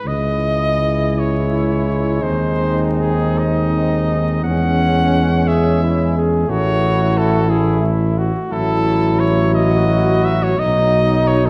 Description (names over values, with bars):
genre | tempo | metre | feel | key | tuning
classical, hymn-like piece for brass band | 50-60 BPM (dotted quarters) | 6/8 | rubato | C# minor | A4 = 443 Hz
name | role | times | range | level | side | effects
warm cornet | melody | 0.0-11.5 s | G#4 to F#5 | -23 LUFS | equal | none
clear trombone | accompaniment | 0.0-11.5 s | F#3 to A3 | -26 LUFS | equal | none
clear trombone section | accompaniment | 0.1-11.5 s | B#3 to E4 | -26 LUFS | equal | none
mellow tuba | bass | 0.1-11.5 s | A1 to E2 | -20 LUFS | equal | none
mellow flugelhorn | second line | 1.2-11.5 s | C#4 to G#4 | -26 LUFS | equal | none
room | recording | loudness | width
moderate scoring stage reverb, RT60 1.9 s | worn, warbling old tape, cassette tape, vinyl crackle, warbly pitch drift | -17 LUFS | mono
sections
0.1-11.5 A section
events
none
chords
0.1 C#m; 2.2 G#/D#; 4.4 C#m/E; 6.5 A; 8.5 F#m7/A; 10.6 B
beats
| 0.07 1.18 | 2.23 3.38 | 4.44 5.47 | 6.49 7.50 | 8.52 9.54 | 10.58